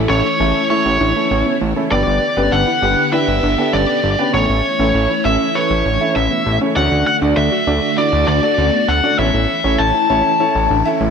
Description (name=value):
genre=synth-pop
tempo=99 BPM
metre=4/4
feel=straight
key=unclear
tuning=A4 = 440 Hz
part: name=warm concert grand piano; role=accompaniment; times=0.0-11.1 s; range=A3 to E5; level=-20 LUFS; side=right 1 dB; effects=none
part: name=phased string machine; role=sustained chords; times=0.0-11.1 s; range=D3 to G4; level=-22 LUFS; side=equal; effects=ensemble chorus, phaser
part: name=warbly dusty pluck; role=arpeggios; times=0.0-11.1 s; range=B3 to F#4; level=-24 LUFS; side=equal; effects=chorus, ping-pong delay
part: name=fat analog bass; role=bass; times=0.0-11.1 s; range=G1 to D2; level=-18 LUFS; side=equal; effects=none
part: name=lead guitar through a small cranked amp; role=melody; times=0.1-11.0 s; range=C#5 to A5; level=-17 LUFS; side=left 2 dB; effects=overdrive, ping-pong delay
room=light reverb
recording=none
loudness=-13 LUFS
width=side -6 dB against mid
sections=0.0-11.1 A section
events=none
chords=0.0 A; 1.9 G; 4.3 A; 6.8 D; 9.2 A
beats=0.10 0.70 1.31 | 1.92 2.52 3.13 3.73 | 4.34 4.95 5.55 6.16 | 6.76 7.37 7.98 8.58 | 9.19 9.79 10.40 11.01